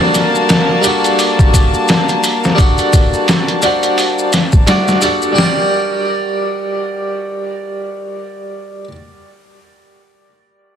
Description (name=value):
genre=trip hop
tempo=86 BPM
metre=4/4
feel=swing 58% on 16ths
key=G harmonic minor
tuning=A4 = 440 Hz
part: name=harpsichord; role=accompaniment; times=0.0-9.0 s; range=G3 to D5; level=-16 LUFS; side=equal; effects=tremolo, vintage 12-bit sampler grit, low-pass filter, tape echo
part: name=warm studio violin section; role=sustained chords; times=0.0-5.4 s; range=Bb3 to A5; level=-19 LUFS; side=left 3 dB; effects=vintage 12-bit sampler grit
part: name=trip hop sampler-style drum kit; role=drums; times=0.0-5.6 s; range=hi-hat, kick drum, snare drum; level=-13 LUFS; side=equal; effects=overdrive
part: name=maracas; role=percussion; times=0.1-5.3 s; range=none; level=-24 LUFS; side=left 4 dB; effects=none
room=light reverb, studio ambience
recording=dense, heavily limited modern master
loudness=-11 LUFS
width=side -8 dB against mid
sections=0.0-5.4 A section; 5.4-8.2 B section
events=none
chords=0.0 D/G; 5.4 Gm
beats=0.49 1.19 1.89 | 2.58 3.28 3.98 4.68 | 5.37 6.07 6.77 7.47